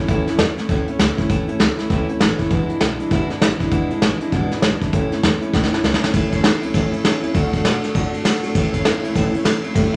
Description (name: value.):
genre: rockabilly.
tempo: 198 BPM.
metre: 4/4.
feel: swing 62% on 8ths.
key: A major.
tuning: A4 = 439 Hz.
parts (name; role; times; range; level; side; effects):
picked steel-string acoustic guitar; accompaniment; 0.0-10.0 s; E2 to F#4; -24 LUFS; equal; none.
upright bass; bass; 0.1-9.9 s; E1 to B2; -31 LUFS; equal; none.
vintage brush drum kit; drums; 0.1-10.0 s; hi-hat, kick drum, ride cymbal, snare drum; -21 LUFS; equal; none.
room: moderate large studio reverb, RT60 0.8 s.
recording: none.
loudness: -19 LUFS.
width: mono.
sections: 0.0-6.1 A section; 6.1-10.0 B section.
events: drum fill 5.5-6.1.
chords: 0.0 A; 2.5 E7; 4.9 A; 7.3 D; 8.6 A.